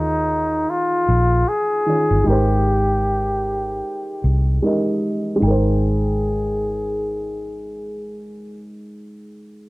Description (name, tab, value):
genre	lo-fi hip hop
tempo	76 BPM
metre	4/4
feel	swing 59% on 16ths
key	Ab major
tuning	A4 = 443 Hz
part	breathy flugelhorn	melody	0.0-8.7 s	Eb4 to Ab4	-22 LUFS	left 1 dB	low-pass filter
part	dark upright piano	accompaniment	0.0-9.7 s	Eb3 to G5	-24 LUFS	right 1 dB	cassette tape, low-pass filter
part	vintage muted fingered electric bass	bass	0.0-8.7 s	G1 to Eb2	-20 LUFS	equal	none
room	moderate studio reverb, RT60 0.7 s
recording	none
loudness	-17 LUFS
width	side -21 dB against mid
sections	0.0-5.4 A section; 5.4-8.6 B section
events	filter sweep 0.0-5.4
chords	0.0 Eb9sus4; 2.3 Abmaj7